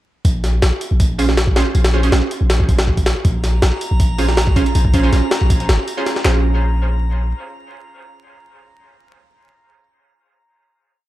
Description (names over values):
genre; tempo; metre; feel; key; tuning
drum and bass, jungle; 160 BPM; 4/4; straight; Bb minor; A4 = 439 Hz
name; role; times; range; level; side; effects
warm 808-style bass; bass; 0.2-7.3 s; Ab1 to Bb1; -16 LUFS; equal; none
jungle sampler-style drum kit; drums; 0.2-6.3 s; handclaps, hi-hat, kick drum, snare drum; -17 LUFS; equal; none
orchestra-hit-like synth stab; stabs; 1.2-10.4 s; Db4 to C5; -22 LUFS; right 4 dB; built-in reverb, dub echo
drifting glass-harmonics texture; texture; 3.5-6.3 s; Bb5; -29 LUFS; left 1 dB; chorus, built-in reverb
room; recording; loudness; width
light reverb; dark, warm production, vinyl crackle; -14 LUFS; side -15 dB against mid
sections
0.2-6.2 drop; 6.2-9.2 final chord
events
drop 0.2-6.2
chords
0.2 Bbm7